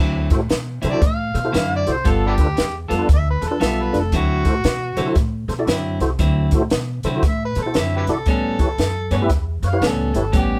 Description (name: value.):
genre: electric blues shuffle.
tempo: 116 BPM.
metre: 4/4.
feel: swing 64% on 8ths.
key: D mixolydian.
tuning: A4 = 440 Hz.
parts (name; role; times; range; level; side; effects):
clean electric guitar; riff; 0.0-10.6 s; A2 to A4; -26 LUFS; equal; none.
upright bass; bass; 0.0-10.6 s; F1 to C3; -25 LUFS; equal; none.
mellow tonewheel organ; accompaniment; 0.3-10.2 s; D4 to E5; -25 LUFS; equal; slow rotary speaker, chorus vibrato.
compact cocktail drum kit; drums; 0.3-10.5 s; hi-hat, kick drum, snare drum; -22 LUFS; equal; none.
overdriven harmonica; melody; 0.9-10.6 s; D4 to F5; -27 LUFS; equal; none.
room: light reverb.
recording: band playing live in one room.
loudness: -19 LUFS.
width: mono.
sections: 0.0-10.6 A section.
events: none.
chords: 0.0 D9; 2.0 G9; 4.1 D9; 8.3 A9.